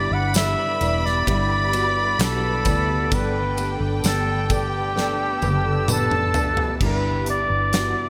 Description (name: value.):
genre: pop ballad.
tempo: 65 BPM.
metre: 4/4.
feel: straight.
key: G major.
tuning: A4 = 439 Hz.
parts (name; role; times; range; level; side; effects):
clear flugelhorn; melody; 0.0-8.1 s; G4 to F#5; -26 LUFS; equal; none.
dark studio violin section; second line; 0.0-6.8 s; G5 to B5; -33 LUFS; equal; digital delay.
warm concert grand piano; accompaniment; 0.0-8.1 s; G2 to B4; -30 LUFS; equal; ensemble chorus.
muted studio string section; sustained chords; 0.0-8.1 s; B4 to E6; -38 LUFS; equal; none.
picked steel-string acoustic guitar; arpeggios; 0.0-8.1 s; G2 to A4; -38 LUFS; equal; none.
vintage muted fingered electric bass; bass; 0.0-7.9 s; E1 to D2; -28 LUFS; equal; none.
huge arena drum kit; drums; 0.3-8.0 s; crash cymbal, hi-hat, kick drum, ride cymbal, snare drum, toms; -28 LUFS; equal; none.
tambourine; percussion; 0.3-6.6 s; none; -35 LUFS; equal; none.
room: light reverb, studio reverb.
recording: bright 1980s-style digital production.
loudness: -21 LUFS.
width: mono.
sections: 0.0-6.8 A section; 6.8-8.1 A section.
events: drum fill 5.0-6.8.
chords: 0.0 G6; 3.1 Gadd9; 6.8 G6.